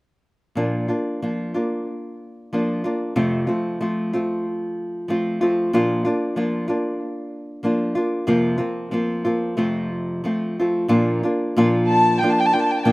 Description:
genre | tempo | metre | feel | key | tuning
mexican folk, mariachi | 93 BPM | 4/4 | straight | Bb major | A4 = 440 Hz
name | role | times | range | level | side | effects
nylon-string guitar | accompaniment | 0.6-12.9 s | F2 to F4 | -20 LUFS | equal | none
warm chamber violin section | melody | 11.9-12.9 s | G5 to A5 | -17 LUFS | equal | none
room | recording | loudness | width
light reverb | recorded outdoors, with no room sound | -19 LUFS | side -21 dB against mid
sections
0.5-10.9 A section; 10.9-12.9 B section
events
none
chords
0.5 Bb; 3.1 F; 5.7 Bb; 8.3 Fsus4; 9.6 F; 10.9 Bb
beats
| 0.55 1.20 1.85 2.50 | 3.15 3.79 4.44 5.08 | 5.72 6.36 6.99 7.63 | 8.28 8.93 9.58 10.24 | 10.90 11.55 12.20 12.85

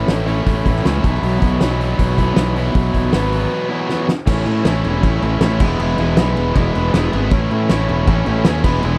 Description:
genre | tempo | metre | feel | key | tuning
indie rock | 158 BPM | 4/4 | straight | unclear | A4 = 440 Hz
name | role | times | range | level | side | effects
overdriven electric guitar | riff | 0.0-9.0 s | A2 to E4 | -22 LUFS | equal | none
fuzz fingered electric bass | bass | 0.0-9.0 s | E1 to A2 | -21 LUFS | equal | overdrive
loose indie drum kit | drums | 0.1-8.9 s | crash cymbal, hi-hat, kick drum, snare drum | -21 LUFS | equal | none
room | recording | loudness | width
studio reverb | none | -17 LUFS | mono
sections
0.0-4.3 A section; 4.3-9.0 B section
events
break 3.5-4.3; drum fill 3.9-4.3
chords
0.0 A; 1.0 Bsus4; 4.3 A; 5.6 E; 7.3 A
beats
0.09 0.47 0.85 | 1.23 1.61 1.99 2.37 | 2.75 3.13 3.52 3.90 | 4.28 4.66 5.04 5.42 | 5.79 6.17 6.55 6.93 | 7.32 7.70 8.07 8.46 | 8.84

